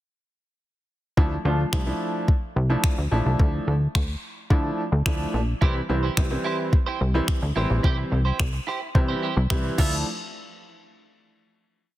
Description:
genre	dance-pop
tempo	108 BPM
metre	4/4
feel	straight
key	D minor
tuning	A4 = 437 Hz
part	warm baby grand piano	accompaniment	1.2-10.0 s	E3 to F4	-28 LUFS	equal	sidechain pumping
part	plucky analog bass	bass	1.2-10.0 s	A1 to D3	-24 LUFS	equal	sidechain pumping
part	smooth R&B drum kit	drums	1.2-9.9 s	crash cymbal, finger snaps, kick drum	-22 LUFS	equal	soft clipping on snare
part	clean electric guitar	riff	5.6-10.0 s	E4 to E5	-31 LUFS	right 5 dB	lush chorus
room	little or no reverb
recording	dense, heavily limited modern master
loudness	-21 LUFS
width	side -15 dB against mid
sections	1.2-10.1 verse; 10.1-12.0 final hit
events	none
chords	1.2 Dmadd9; 5.6 C; 9.8 Dmadd9; 10.1 N.C.

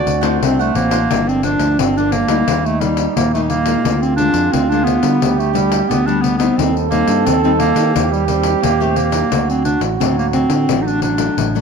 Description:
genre	samba and choro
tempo	88 BPM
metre	4/4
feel	straight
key	G minor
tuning	A4 = 441 Hz
part	warm clarinet	melody	0.0-11.6 s	G3 to D5	-17 LUFS	right 1 dB	none
part	warm trombone	second line	0.0-11.6 s	C4 to A4	-21 LUFS	right 11 dB	none
part	cavaquinho	accompaniment	0.0-1.1 s	A4 to F#5	-24 LUFS	right 12 dB	none
part	nylon-string guitar	accompaniment	0.0-11.6 s	G2 to G4	-22 LUFS	left 12 dB	none
part	fingered electric bass	bass	0.0-11.6 s	G1 to Eb3	-20 LUFS	right 1 dB	none
part	pandeiro	percussion	0.1-11.6 s	none	-22 LUFS	left 12 dB	none
room	moderate echo chamber reverb, RT60 1.7 s, small room ambience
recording	1960s-style stereo with parts hard left and right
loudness	-13 LUFS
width	side -6 dB against mid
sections	0.0-1.1 A section; 1.1-11.6 B section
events	none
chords	0.0 D7; 1.1 Gm7; 2.5 Eb; 3.8 Bb7/D; 5.2 G/D; 6.6 Cm/Eb; 8.0 Eb6; 9.3 D

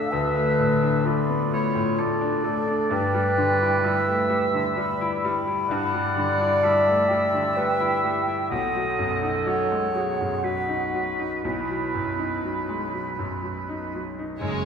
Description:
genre	cinematic, emotional film score for orchestra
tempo	59-65 BPM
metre	3/4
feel	rubato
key	unclear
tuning	A4 = 440 Hz
part	clear oboe	second line	0.0-14.1 s	B4 to F#5	-29 LUFS	right 1 dB	none
part	dark clarinet	second line	0.0-13.4 s	D#4 to D5	-26 LUFS	equal	none
part	mellow hollow concert flute	second line	0.0-14.0 s	F5 to B5	-30 LUFS	equal	none
part	bright concert grand piano	accompaniment	0.0-14.7 s	B1 to E4	-28 LUFS	left 1 dB	none
part	concert harp	arpeggios	0.0-14.7 s	F#2 to D#5	-31 LUFS	left 4 dB	none
part	rich studio violin section	melody	14.4-14.7 s	C#5	-35 LUFS	left 4 dB	none
part	rich studio violin section	second line	14.4-14.6 s	G#3	-32 LUFS	equal	none
part	rich studio viola section	accompaniment	14.4-14.7 s	G#3	-32 LUFS	right 4 dB	none
part	rich studio cello section	bass	14.4-14.7 s	F#2	-33 LUFS	right 3 dB	none
part	rich studio double bass section	bass	14.4-14.7 s	F#1	-33 LUFS	right 5 dB	none
room	wet scoring stage reverb, RT60 1.8 s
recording	recorded in a church or concert hall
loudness	-21 LUFS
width	side -7 dB against mid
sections	0.0-14.4 A section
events	none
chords	0.0 Dm; 2.9 G6; 8.5 B

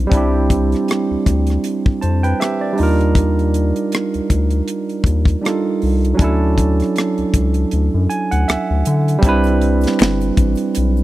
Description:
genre	R&B, neo-soul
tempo	79 BPM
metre	4/4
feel	swing 56% on 16ths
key	C major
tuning	A4 = 441 Hz
part	barky tine electric piano	accompaniment	0.0-11.0 s	F#3 to A5	-18 LUFS	right 3 dB	none
part	round analog bass	bass	0.0-11.0 s	G1 to D3	-17 LUFS	left 1 dB	none
part	tight funk drum kit	drums	0.1-10.9 s	hi-hat, kick drum, rim click, snare drum	-16 LUFS	left 1 dB	none
part	egg shaker and finger snaps	percussion	9.2-11.0 s	none	-30 LUFS	left 18 dB	none
room	studio ambience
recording	dry, close 1970s-style studio recording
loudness	-14 LUFS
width	side -16 dB against mid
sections	0.0-9.2 A section; 9.2-11.0 B section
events	tine electric piano fill 7.7-9.2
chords	0.0 Cmaj9; 2.8 Ebmaj9; 6.2 Dmaj9; 9.2 Cmaj9

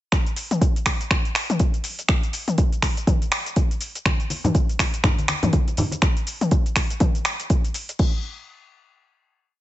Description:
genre	house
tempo	122 BPM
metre	4/4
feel	swing 59% on 16ths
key	none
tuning	none
part	deep house drum kit	drums	0.1-8.1 s	crash cymbal, finger snaps, hi-hat, shaker, toms	-24 LUFS	left 1 dB	overdrive
part	electronic kick drum	drums	0.1-8.1 s	none	-20 LUFS	equal	none
part	congas	percussion	4.1-6.0 s	none	-25 LUFS	equal	none
room	little or no reverb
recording	nothing above 7.9 kHz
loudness	-20 LUFS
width	side -14 dB against mid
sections	0.1-8.0 drop; 8.0-9.6 final hit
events	drop 0.1-8.0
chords	none

